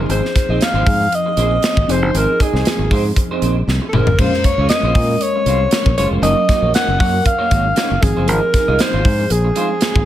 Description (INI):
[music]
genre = polished 1980s jazz-funk pop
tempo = 117 BPM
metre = 4/4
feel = swing 54% on 16ths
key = unclear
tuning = A4 = 440 Hz
[part]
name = bell-like FM electric piano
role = accompaniment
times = 0.0-10.1 s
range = F3 to Bb4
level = -24 LUFS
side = left 1 dB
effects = phaser, tremolo, wide subtle chorus
[part]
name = electric guitar through a small old amp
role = riff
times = 0.0-10.0 s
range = Ab3 to Eb5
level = -24 LUFS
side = right 3 dB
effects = lush chorus
[part]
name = fingered electric bass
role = bass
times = 0.0-10.0 s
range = F1 to Bb2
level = -18 LUFS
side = equal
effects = none
[part]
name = mellow alto saxophone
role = melody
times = 0.1-10.1 s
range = Ab4 to Gb5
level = -18 LUFS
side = equal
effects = none
[part]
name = modern studio drum kit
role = drums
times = 0.1-10.1 s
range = crash cymbal, hi-hat, kick drum, snare drum, toms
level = -18 LUFS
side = equal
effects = gated reverb
[sound]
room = light reverb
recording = none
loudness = -13 LUFS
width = side -12 dB against mid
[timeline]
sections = 0.0-10.1 A section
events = drum fill 3.7-4.2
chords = 0.0 Fm7; 4.2 Bbm9; 6.2 Gb6; 8.0 Fm7